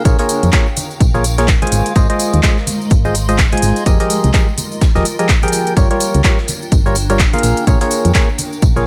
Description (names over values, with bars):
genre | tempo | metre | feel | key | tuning
piano house | 126 BPM | 4/4 | swing 59% on 16ths | unclear | A4 = 440 Hz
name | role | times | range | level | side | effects
percussive organ stab | riff | 0.0-8.9 s | F3 to Ab5 | -20 LUFS | equal | chorus, sidechain pumping, digital delay
congas and tambourine | percussion | 0.0-8.8 s | none | -30 LUFS | equal | none
granular cloud pad | texture | 0.0-8.9 s | Ab3 to C6 | -28 LUFS | equal | built-in reverb, sidechain pumping
solid FM bass | bass | 0.1-8.9 s | Eb1 to F2 | -18 LUFS | equal | sidechain pumping
electronic kick drum | drums | 0.1-8.7 s | none | -15 LUFS | equal | none
house drum kit | drums | 0.1-8.8 s | handclaps, hi-hat, shaker | -22 LUFS | equal | none
modern studio drum kit | drums | 0.1-8.8 s | hi-hat, snare drum, tambourine | -32 LUFS | equal | none
room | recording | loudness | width
small room ambience | none | -14 LUFS | mono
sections
0.0-8.9 A section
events
none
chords
0.0 Bbm7; 1.7 Ab6; 3.9 Fm11; 5.8 Gm7b5; 7.4 Bbm7